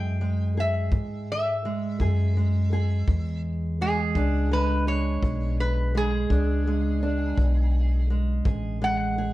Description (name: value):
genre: acoustic country blues, solo or duo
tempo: 56 BPM (dotted quarters)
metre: 12/8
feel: straight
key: E mixolydian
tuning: A4 = 440 Hz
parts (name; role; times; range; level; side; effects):
- metal-body resonator slide guitar; melody; 0.0-9.3 s; G#4 to G5; -30 LUFS; equal; slapback echo, plate reverb
- fingerpicked steel-string acoustic guitar; accompaniment; 0.0-9.3 s; E2 to G#4; -30 LUFS; right 3 dB; none
- upright bass; bass; 0.0-9.3 s; A1 to G#2; -24 LUFS; equal; none
- kick drum; drums; 0.9-8.6 s; none; -26 LUFS; equal; none
room: light reverb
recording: dark, warm production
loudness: -22 LUFS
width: side -16 dB against mid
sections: 0.0-9.3 A section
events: none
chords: 0.0 E7